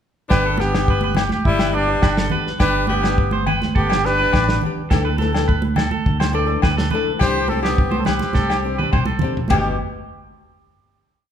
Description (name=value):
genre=highlife guitar band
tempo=104 BPM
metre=4/4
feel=straight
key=G major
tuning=A4 = 444 Hz
part: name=mellow trumpet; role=melody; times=0.3-9.8 s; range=D4 to C5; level=-22 LUFS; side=right 1 dB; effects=none
part: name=edgy tenor saxophone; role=second line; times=0.3-9.8 s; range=B2 to G4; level=-27 LUFS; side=left 5 dB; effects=none
part: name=flamenco guitar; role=accompaniment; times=0.3-9.7 s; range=E3 to A4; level=-27 LUFS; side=left 5 dB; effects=none
part: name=electric guitar at the edge of break-up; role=arpeggios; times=0.3-9.8 s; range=G4 to D5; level=-26 LUFS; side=right 4 dB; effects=spring reverb
part: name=fingered electric bass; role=bass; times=0.3-9.8 s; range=G1 to D2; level=-23 LUFS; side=right 1 dB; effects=none
part: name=warm soul drum kit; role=drums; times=0.3-9.6 s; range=kick drum, ride cymbal, snare drum, toms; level=-21 LUFS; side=equal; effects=none
part: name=agogo bells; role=percussion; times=0.3-9.6 s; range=none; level=-28 LUFS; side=left 7 dB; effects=none
part: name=congas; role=percussion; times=0.6-9.8 s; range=none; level=-26 LUFS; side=right 2 dB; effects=none
room=moderate large studio reverb, RT60 1.3 s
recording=band playing live in one room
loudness=-16 LUFS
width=side -9 dB against mid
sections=0.3-9.5 A section; 9.5-11.3 final chord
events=drum fill 8.4-9.5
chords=0.3 G; 4.9 Dsus2; 7.2 Csus2; 9.5 G